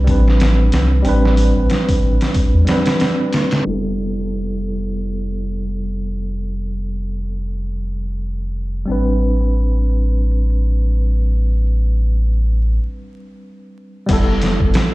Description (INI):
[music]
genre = trip hop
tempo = 92 BPM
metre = 4/4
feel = swing 57% on 16ths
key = unclear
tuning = A4 = 440 Hz
[part]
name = tine electric piano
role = accompaniment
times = 0.0-14.9 s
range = G3 to B4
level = -22 LUFS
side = right 1 dB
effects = overdrive, fast stereo tremolo, vintage 12-bit sampler grit, tape echo
[part]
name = warm sub bass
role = bass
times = 0.0-14.7 s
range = F1 to E2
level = -17 LUFS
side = equal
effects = none
[part]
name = trip hop sampler-style drum kit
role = drums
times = 0.1-3.7, 14.1-14.9 s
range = crash cymbal, hi-hat, kick drum, snare drum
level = -18 LUFS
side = equal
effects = none
[sound]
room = little or no reverb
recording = played on a big sound system in a bare room, large studio reverb, vinyl crackle, low-pass filter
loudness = -15 LUFS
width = side -19 dB against mid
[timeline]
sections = 0.0-3.7 A section; 3.7-14.1 B section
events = break 12.8-14.1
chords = 0.0 Am11; 3.7 Fmaj9#11; 8.9 Am11; 14.1 Fmaj9#11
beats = 0.40 | 1.05 1.70 2.35 3.00 | 3.66 4.31 4.96 5.61 | 6.27 6.92 7.57 8.22 | 8.87 9.53 10.18 10.83 | 11.48 12.13 12.79 13.44 | 14.09 14.74